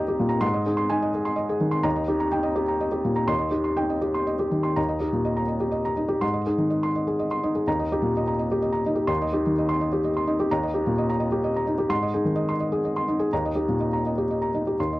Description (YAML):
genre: neoclassical minimalist piano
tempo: 126 BPM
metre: 3/4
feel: rubato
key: Eb major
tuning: A4 = 440 Hz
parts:
  - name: felt-muted upright piano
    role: solo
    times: 0.0-15.0 s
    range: Eb2 to C6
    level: -22 LUFS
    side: equal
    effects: none
room: light reverb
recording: dry, close 1970s-style studio recording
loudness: -22 LUFS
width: side -18 dB against mid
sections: 0.0-4.8 A section; 4.8-15.0 B section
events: none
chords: 0.4 Ab; 1.9 Eb; 3.3 Cm/Eb; 4.8 Eb; 6.2 Ab; 7.7 Eb; 9.1 Cm/Eb; 10.5 Eb; 11.9 Ab; 13.3 Eb